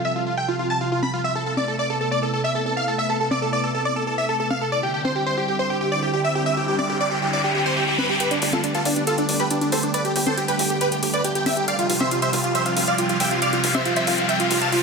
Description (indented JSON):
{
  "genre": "uplifting trance",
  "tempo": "138 BPM",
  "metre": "4/4",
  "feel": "straight",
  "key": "unclear",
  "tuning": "A4 = 439 Hz",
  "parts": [
    { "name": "big supersaw lead", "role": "melody", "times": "0.0-14.8 s", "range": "D4 to B5", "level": "-22 LUFS", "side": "equal", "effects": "phaser, low-pass filter, ping-pong delay" },
    { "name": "warm grand piano", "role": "second line", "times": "0.0-1.2 s", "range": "A4", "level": "-44 LUFS", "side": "right 1 dB", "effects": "none" },
    { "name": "analog string pad", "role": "sustained chords", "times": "0.0-14.8 s", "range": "C3 to A4", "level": "-26 LUFS", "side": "right 2 dB", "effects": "ensemble chorus" },
    { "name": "wide unison pluck", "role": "second line", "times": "0.1-14.8 s", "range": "D4 to B5", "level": "-29 LUFS", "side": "right 1 dB", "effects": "lush chorus, ping-pong delay" },
    { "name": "electronic congas and hi-hat", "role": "drums", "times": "1.0-14.8 s", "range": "none", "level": "-26 LUFS", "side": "left 1 dB", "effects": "low-pass filter on cymbals, low-pass filter on perc, low-pass filter on hats, low-pass filter on room" },
    { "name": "riser", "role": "sound effects", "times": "5.6-14.8 s", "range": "none", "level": "-27 LUFS", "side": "left 2 dB", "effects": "none" },
    { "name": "tight sequencer bass", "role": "bass", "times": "8.4-14.6 s", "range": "F1 to G1", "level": "-35 LUFS", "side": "left 1 dB", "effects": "none" }
  ],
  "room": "light reverb, digital ambience",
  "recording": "high-pass filter",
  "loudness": "-19 LUFS",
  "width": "side -4 dB against mid",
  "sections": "0.0-8.2 A section; 8.2-14.8 B section",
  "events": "filter sweep on drum 0.0-8.2; filter sweep on analog synth pad 0.0-8.2; riser 5.6-8.2, 8.2-14.8; build-up 8.2-14.8",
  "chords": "0.0 Fsus2; 1.2 Amadd9; 4.7 Cadd9; 8.2 Gadd9; 11.7 Fsus2"
}